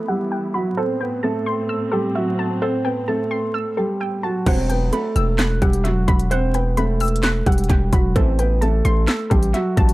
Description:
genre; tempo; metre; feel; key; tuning
hip hop, trap; 130 BPM; 4/4; half-time; E minor; A4 = 441 Hz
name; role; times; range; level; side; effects
felt-muted upright piano; melody; 0.0-9.9 s; F#3 to C5; -22 LUFS; right 1 dB; low-pass filter, tape echo
warbly dusty pluck; accompaniment; 0.0-9.9 s; A4 to F#6; -27 LUFS; equal; chorus, low-pass filter, tape echo
muted studio string section; sustained chords; 0.0-4.4 s; A2 to E4; -28 LUFS; right 1 dB; low-pass filter
downlifter; sound effects; 0.0-0.8 s; none; -52 LUFS; left 1 dB; none
dark brass ensemble; stabs; 4.5-4.9, 8.2-8.6 s; G2 to F#3; -32 LUFS; right 2 dB; tape echo
distorted 808-style bass; bass; 4.5-9.9 s; E1 to A1; -19 LUFS; equal; distortion
trap drum kit; drums; 4.5-9.9 s; crash cymbal, handclaps, hi-hat, kick drum, snare drum; -20 LUFS; equal; none
room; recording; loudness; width
little or no reverb; echo-heavy mix, vinyl crackle; -17 LUFS; side -18 dB against mid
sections
0.0-4.5 A section; 4.5-9.9 B section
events
filter sweep 0.0-4.5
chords
0.0 Emadd9; 0.8 Am7; 4.5 Emadd9; 8.2 Am7

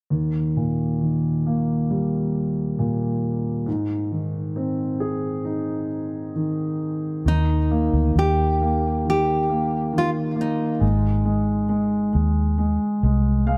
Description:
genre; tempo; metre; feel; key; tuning
pop; 68 BPM; 4/4; straight; Eb major; A4 = 440 Hz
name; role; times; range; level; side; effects
warm concert grand piano; accompaniment; 0.1-13.6 s; Eb2 to F5; -25 LUFS; equal; none
nylon-string guitar; melody; 7.3-13.0 s; Eb4 to G4; -27 LUFS; equal; tape echo
vintage muted fingered electric bass; bass; 7.3-13.6 s; Ab1 to Eb2; -24 LUFS; equal; none
room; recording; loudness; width
moderate plate reverb, RT60 3.6 s; dark, warm production; -23 LUFS; mono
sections
0.1-7.3 A section; 7.3-13.6 B section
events
grand piano fill 13.0-13.6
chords
0.1 Eb; 3.7 Ab; 7.3 Eb; 10.8 Ab

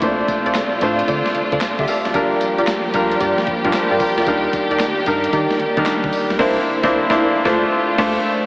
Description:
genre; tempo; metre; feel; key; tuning
R&B, new jack swing; 113 BPM; 4/4; swing 67% on 16ths; D minor; A4 = 435 Hz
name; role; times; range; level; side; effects
clear baby grand piano; accompaniment; 0.0-8.5 s; G3 to A5; -18 LUFS; equal; none
warm studio string section; sustained chords; 0.0-8.5 s; C3 to D5; -22 LUFS; equal; none
funky polysynth comp; stabs; 0.0-8.2 s; Eb4 to D5; -22 LUFS; equal; chorus, analog delay
round analog bass; bass; 0.0-8.2 s; F#1 to Eb3; -29 LUFS; equal; none
clean 12-bit digital drum machine; drums; 0.0-8.2 s; crash cymbal, handclaps, hi-hat, kick drum, snare drum, tambourine; -25 LUFS; equal; none
room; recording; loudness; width
wet huge ambient reverb, RT60 7.1 s; dreamy mix soaked in reverb, AM radio sound; -15 LUFS; side -24 dB against mid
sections
0.0-8.5 A section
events
band accent 6.4-8.5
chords
0.0 Dm7; 2.1 Gm7; 4.3 Ebmaj7; 6.4 C9; 7.5 Dm7

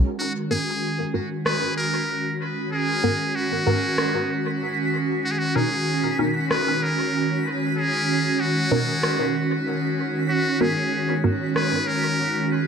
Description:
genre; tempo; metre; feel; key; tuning
ambient dub; 95 BPM; 4/4; straight; G# minor; A4 = 439 Hz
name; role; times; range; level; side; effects
warm analog pad; sustained chords; 0.0-12.7 s; D#3 to A#4; -25 LUFS; right 1 dB; chorus
trumpet with metal mute; melody; 0.2-12.5 s; F#4 to B4; -25 LUFS; left 1 dB; dub echo
backwards swelling texture; texture; 2.1-12.7 s; B6; -34 LUFS; right 3 dB; built-in reverb
filtered dub chord stab; stabs; 0.5-11.4 s; G#2 to A#4; -27 LUFS; equal; phaser, dub echo
electronic rim click; drums; 1.5-11.7 s; none; -28 LUFS; left 1 dB; dub echo
room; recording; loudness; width
wet spring reverb, RT60 2.6 s; none; -20 LUFS; side -6 dB against mid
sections
0.2-12.7 A section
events
none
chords
0.2 G#m7; 5.2 Bmaj7; 10.3 G#m7

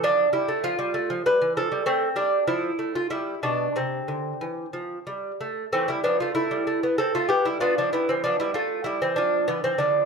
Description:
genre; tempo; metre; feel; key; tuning
classical, baroque-style dance for lute; 90-99 BPM; 3/4; rubato; C major, A minor from 5.7 s; A4 = 440 Hz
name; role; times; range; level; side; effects
lute; solo; 0.0-10.1 s; B2 to B4; -22 LUFS; right 1 dB; none
room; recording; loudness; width
light reverb; close, detailed microphones; -22 LUFS; side -5 dB against mid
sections
0.0-5.7 A section; 5.7-10.1 A section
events
none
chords
0.0 F; 1.3 G; 1.9 Am; 2.5 Fmaj7; 3.1 G; 3.8 C; 5.7 A5/E; 7.0 Am; 7.6 Bdim; 9.5 E5

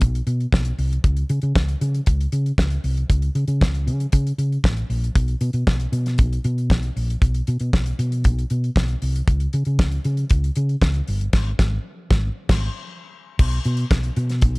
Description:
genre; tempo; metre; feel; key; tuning
disco; 117 BPM; 4/4; straight; unclear; A4 = 440 Hz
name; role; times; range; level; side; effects
hollow-body short-scale fingered electric bass; bass; 0.0-14.6 s; G1 to C#3; -21 LUFS; equal; none
damped 70s drum kit; drums; 0.0-14.6 s; crash cymbal, hi-hat, kick drum, snare drum; -20 LUFS; equal; none
room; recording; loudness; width
little or no reverb; dark, warm production; -18 LUFS; side -28 dB against mid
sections
0.0-13.4 A section; 13.4-14.6 B section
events
band accent 11.3-13.4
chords
none

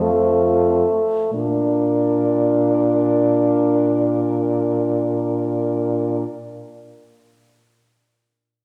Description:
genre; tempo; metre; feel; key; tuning
classical, lyrical piece for horn quartet; free time; none; none; Bb major; A4 = 440 Hz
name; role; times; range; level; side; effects
warm French horn; melody; 0.0-6.2 s; C5 to D5; -28 LUFS; equal; none
clear French horn; second line; 0.0-6.2 s; F4 to Bb4; -28 LUFS; equal; none
mellow French horn; accompaniment; 0.0-6.2 s; A3 to D4; -22 LUFS; equal; none
clear French horn; bass; 0.0-6.2 s; F2 to Bb2; -25 LUFS; equal; none
room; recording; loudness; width
moderate concert hall reverb, RT60 2.0 s; heard from further back in the room; -19 LUFS; mono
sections
0.0-1.3 A section; 1.3-6.6 B section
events
slowing down 0.0-1.3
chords
0.0 F; 1.3 Bb

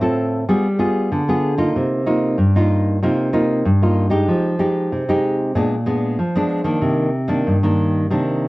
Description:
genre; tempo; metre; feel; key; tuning
samba; 94 BPM; 4/4; straight; unclear; A4 = 440 Hz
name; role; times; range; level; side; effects
nylon-string guitar; solo; 0.0-8.5 s; G2 to A4; -16 LUFS; equal; slapback echo
room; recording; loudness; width
light reverb; worn, warbling old tape, cassette tape, warbly pitch drift; -16 LUFS; side -20 dB against mid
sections
0.0-6.8 A section; 6.8-8.5 B section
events
none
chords
0.5 G7b9; 1.7 Cm7; 4.3 Fm9; 5.6 Bb7b9; 6.8 Cm9

